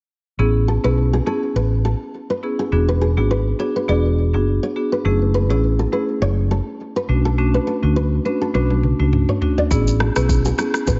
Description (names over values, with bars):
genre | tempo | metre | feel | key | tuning
afrobeats | 103 BPM | 4/4 | swing 55% on 16ths | A major | A4 = 440 Hz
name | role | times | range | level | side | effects
marimba with medium mallets | accompaniment | 0.4-10.9 s | A3 to G#4 | -24 LUFS | equal | none
hollow-body short-scale fingered electric bass | bass | 0.4-11.0 s | E1 to D2 | -20 LUFS | equal | none
nylon-string guitar | riff | 0.7-11.0 s | G#4 to D5 | -27 LUFS | equal | tape echo
afro-pop drum kit | drums | 8.5-11.0 s | kick drum, rim click, shaker, toms | -23 LUFS | equal | none
room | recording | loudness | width
light reverb, digital ambience | nothing above 7.8 kHz | -19 LUFS | mono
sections
0.4-11.0 A section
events
drum fill 8.5-9.7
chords
0.4 Amaj9; 2.7 E7; 5.1 F#m7; 7.1 Bm7; 9.7 Amaj9